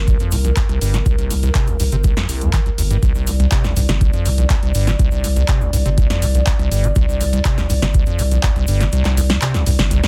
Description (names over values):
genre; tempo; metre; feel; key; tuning
acid house; 122 BPM; 4/4; straight; unclear; A4 = 441 Hz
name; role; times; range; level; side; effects
dark analog pad; sustained chords; 0.0-10.1 s; Bb4 to D5; -31 LUFS; equal; chorus, sidechain pumping
saturated sub bass; bass; 0.0-10.0 s; G1 to C2; -20 LUFS; equal; sidechain pumping
acid bass, square; riff; 0.1-10.1 s; Bb1 to Eb3; -22 LUFS; equal; digital delay
electronic kick drum; drums; 0.1-8.5 s; none; -20 LUFS; equal; overdrive
punchy analog drum machine; drums; 0.1-10.1 s; handclaps, hi-hat, snare drum; -26 LUFS; equal; none
cabasa; percussion; 0.1-10.1 s; none; -37 LUFS; equal; none
room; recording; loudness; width
light reverb; dense, heavily limited modern master; -17 LUFS; mono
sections
0.0-10.1 A section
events
kick drops out 8.9-10.1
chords
0.0 C7(no3)